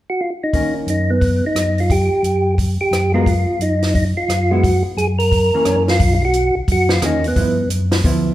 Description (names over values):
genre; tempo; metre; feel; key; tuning
soul jazz organ trio; 176 BPM; 4/4; swing 64% on 8ths; B major; A4 = 440 Hz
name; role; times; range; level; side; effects
percussive tonewheel organ; melody; 0.1-7.7 s; B3 to A#4; -18 LUFS; equal; slow rotary speaker
hollow-body jazz guitar; accompaniment; 0.5-1.1, 3.1-8.3 s; D#3 to Bb4; -22 LUFS; equal; none
compact cocktail drum kit; drums; 0.5-8.1 s; hi-hat, kick drum, rim click, snare drum; -20 LUFS; equal; none
mellow tonewheel organ; bass; 0.9-8.3 s; B1 to G2; -18 LUFS; equal; chorus vibrato, slow rotary speaker
room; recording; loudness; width
moderate recital hall reverb, RT60 1.6 s; recorded in a church or concert hall; -14 LUFS; side -14 dB against mid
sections
0.5-6.0 A section; 6.0-8.3 B section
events
none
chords
0.0 N.C.; 0.5 Bmaj9; 1.9 Gmaj7(no3)/F#; 3.3 G#7(no3) (rootless); 4.6 F#add9; 5.3 F#7; 6.0 Bmaj9; 7.4 G6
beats
0.20 | 0.54 0.88 1.22 1.56 | 1.90 2.24 2.58 2.92 | 3.27 3.61 3.95 4.29 | 4.63 4.97 5.32 5.66 | 6.00 6.34 6.68 7.02 | 7.36 7.70 8.04